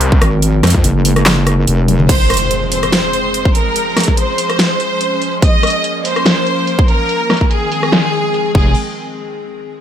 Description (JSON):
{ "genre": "heavy wobble dubstep", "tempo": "144 BPM", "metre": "4/4", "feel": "swing 54% on 16ths, half-time", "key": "F phrygian", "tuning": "A4 = 440 Hz", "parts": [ { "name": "evolving wavetable pad", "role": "sustained chords", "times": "0.0-8.7 s", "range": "Eb3 to Bb4", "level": "-22 LUFS", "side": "left 1 dB", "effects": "ensemble chorus, built-in reverb, sidechain pumping" }, { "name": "snarling distorted saw bass", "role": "bass", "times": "0.0-0.8 s", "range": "C2 to F2", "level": "-13 LUFS", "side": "equal", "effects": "distortion, overdrive" }, { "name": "dubstep drum kit", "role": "drums", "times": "0.0-8.6 s", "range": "crash cymbal, handclaps, hi-hat, rim click, snare drum, toms", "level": "-15 LUFS", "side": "equal", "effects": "overdrive, low-pass filter on hats, low-pass filter on snare, low-pass filter on toms, low-pass filter on cymbals, low-pass filter on room" }, { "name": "electronic kick drum", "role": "drums", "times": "0.1-8.6 s", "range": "none", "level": "-12 LUFS", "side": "equal", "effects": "overdrive" }, { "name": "wobble bass", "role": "bass", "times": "0.2-2.1, 8.5-8.7 s", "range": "F1 to Ab1", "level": "-12 LUFS", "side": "equal", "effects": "chorus, overdrive" }, { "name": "clear studio violin section", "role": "melody", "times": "2.1-8.7 s", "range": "Ab4 to Eb5", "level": "-17 LUFS", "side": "equal", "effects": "dub echo" }, { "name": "impact", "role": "sound effects", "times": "2.1-3.8 s", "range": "none", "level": "-23 LUFS", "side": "equal", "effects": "none" } ], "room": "digital ambience", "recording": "none", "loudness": "-11 LUFS", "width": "side -9 dB against mid", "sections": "0.0-2.1 A section; 2.1-8.8 B section; 8.8-9.8 C section", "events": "drop 0.0-2.1; drum fill 1.9; impact 2.1-3.8; filter sweep on drum 2.1-8.8", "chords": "0.0 Fm; 3.8 Db; 5.4 Bbm; 7.1 Ab; 8.5 Fm; 8.8 N.C." }